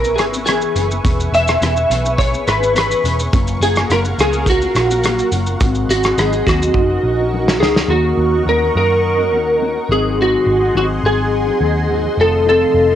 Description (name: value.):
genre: indie pop, bedroom pop.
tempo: 105 BPM.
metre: 4/4.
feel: straight.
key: unclear.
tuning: A4 = 440 Hz.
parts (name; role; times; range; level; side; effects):
clean lap steel guitar; melody; 0.0-13.0 s; Gb4 to E5; -16 LUFS; equal; analog chorus, cassette tape.
mellow electric guitar; accompaniment; 0.0-13.0 s; F2 to Bb4; -23 LUFS; left 7 dB; lush chorus, vibrato effect, cassette tape.
lush unison pad; sustained chords; 0.0-13.0 s; Ab4 to C#6; -24 LUFS; right 1 dB; chorus, phaser, cassette tape.
vintage muted picked electric bass; bass; 0.0-13.0 s; E1 to Gb2; -20 LUFS; right 1 dB; none.
loose indie drum kit; drums; 0.0-7.9 s; hi-hat, kick drum, rim click, shaker, snare drum; -18 LUFS; right 1 dB; vintage 12-bit sampler grit, cassette tape.
room: light reverb.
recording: home recording on cassette.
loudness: -13 LUFS.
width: side -10 dB against mid.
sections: 0.0-7.9 A section; 7.9-13.0 B section.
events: drum fill 6.8-7.9.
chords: 0.0 E6; 3.3 Gbmaj7; 5.6 Ab7; 6.8 Gb6; 7.9 Ebm7; 9.9 Ab7; 12.2 F7.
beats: 0.47 | 1.04 1.61 2.18 2.75 | 3.32 3.89 4.46 5.04 | 5.61 6.18 6.75 7.32 | 7.89 8.47 9.04 9.61 | 10.18 10.75 11.33 11.90 | 12.47.